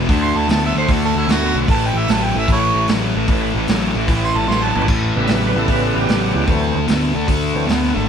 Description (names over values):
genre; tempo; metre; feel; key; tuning
blues rock power trio and southern rock; 150 BPM; 4/4; swing 67% on 8ths; A mixolydian; A4 = 443 Hz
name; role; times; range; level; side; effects
overdriven tonewheel organ; sustained chords; 0.0-7.7 s; C#3 to E5; -24 LUFS; right 3 dB; slow rotary speaker
thick fuzz guitar; riff; 0.0-8.1 s; A2 to B3; -19 LUFS; left 2 dB; distortion
fuzz picked electric bass; bass; 0.0-8.1 s; G#1 to D2; -21 LUFS; equal; overdrive
vintage drum kit; drums; 0.1-7.8 s; crash cymbal, hi-hat, kick drum, snare drum, toms; -21 LUFS; right 1 dB; none
clear harmonica; melody; 0.2-4.9 s; E4 to C6; -20 LUFS; right 4 dB; overdrive
room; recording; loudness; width
light reverb; band playing live in one room; -14 LUFS; side -7 dB against mid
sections
0.0-4.9 A section; 4.9-8.1 A section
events
harmonica solo 0.0-4.9; drum fill 4.5-4.9; tonewheel organ solo 4.9-8.1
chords
0.1 D7; 1.7 A7; 6.5 D7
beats
| 0.10 0.50 0.90 1.29 | 1.69 2.09 2.49 2.89 | 3.29 3.69 4.08 4.49 | 4.88 5.28 5.68 6.08 | 6.49 6.88 7.29 7.69